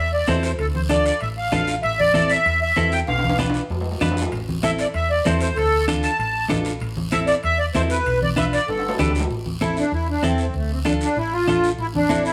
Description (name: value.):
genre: latin, cumbia.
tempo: 193 BPM.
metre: 4/4.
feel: straight.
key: A minor.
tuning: A4 = 441 Hz.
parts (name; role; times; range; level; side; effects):
accordion; melody; 0.0-12.3 s; A3 to A5; -23 LUFS; equal; light tremolo tuning.
hollow-body short-scale fingered electric bass; bass; 0.0-12.3 s; G1 to F2; -28 LUFS; equal; none.
clean electric guitar; accompaniment; 0.3-12.3 s; C4 to B4; -27 LUFS; equal; none.
congas; percussion; 0.3-12.3 s; none; -30 LUFS; equal; none.
guiro; percussion; 0.3-12.3 s; none; -38 LUFS; equal; none.
timbales; percussion; 0.3-9.3 s; none; -34 LUFS; equal; none.
room: wet studio reverb, RT60 0.9 s.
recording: band playing live in one room.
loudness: -21 LUFS.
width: mono.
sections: 0.0-9.3 A section; 9.3-12.3 B section.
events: drum fill 3.1-4.3, 8.7-9.3.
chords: 0.0 Am; 0.6 Dm; 1.8 Am; 3.1 Bdim; 4.3 Am; 5.6 Dm; 6.8 Am; 8.1 Bdim; 8.7 Gadd9; 9.3 Am; 10.5 Dm; 11.8 Am.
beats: 0.28 | 0.59 0.90 1.22 1.53 | 1.84 2.15 2.46 2.77 | 3.08 3.39 3.71 4.02 | 4.33 4.64 4.95 5.26 | 5.57 5.88 6.19 6.50 | 6.82 7.13 7.44 7.75 | 8.06 8.37 8.68 8.99 | 9.30 9.61 9.92 10.23 | 10.55 10.86 11.17 11.48 | 11.79 12.10.